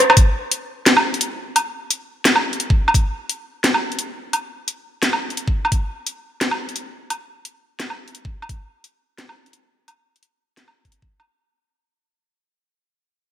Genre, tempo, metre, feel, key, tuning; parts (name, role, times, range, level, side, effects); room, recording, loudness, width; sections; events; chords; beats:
drum and bass; 173 BPM; 4/4; swing 60% on 16ths, half-time
drum and bass drum kit; drums; 0.0-11.3 s; hi-hat, rim click, snare drum, woodblock; -17 LUFS; equal
electronic kick drum; drums; 0.2-0.3, 2.7-3.0, 5.5-5.8, 8.2-8.6, 10.8-11.1 s; -17 LUFS; equal
moderate lush hall reverb, RT60 1.9 s; -18 LUFS; side -10 dB against mid
0.2-11.3 A section
drum fill 0.0; fade-out 0.2-11.3
| 0.17 0.51 0.86 1.21 | 1.55 1.90 2.25 2.60 | 2.94 3.29 3.63 3.98 | 4.33 4.68 5.02 5.37 | 5.72 6.06 6.41 6.76 | 7.10 7.45 7.80 8.14 | 8.49 8.84 9.18 9.53 | 9.88 10.22 10.57 10.92